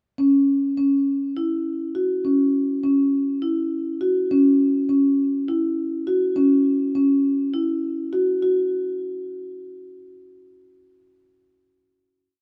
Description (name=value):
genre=progressive instrumental, progressive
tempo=204 BPM (eighths)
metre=7/8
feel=straight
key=unclear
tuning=A4 = 440 Hz
part: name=marimba with soft mallets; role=solo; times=0.2-8.7 s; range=C#4 to F#4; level=-21 LUFS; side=equal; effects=none
room=light reverb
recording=none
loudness=-21 LUFS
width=mono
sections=0.2-8.4 groove; 8.4-10.5 final note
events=none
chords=none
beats=| 0.18 0.48 0.77 1.07 1.36 1.66 1.95 | 2.25 2.54 2.83 3.13 3.42 3.72 4.01 | 4.31 4.60 4.89 5.19 5.48 5.78 6.07 | 6.36 6.66 6.95 7.25 7.54 7.83 8.13 | 8.42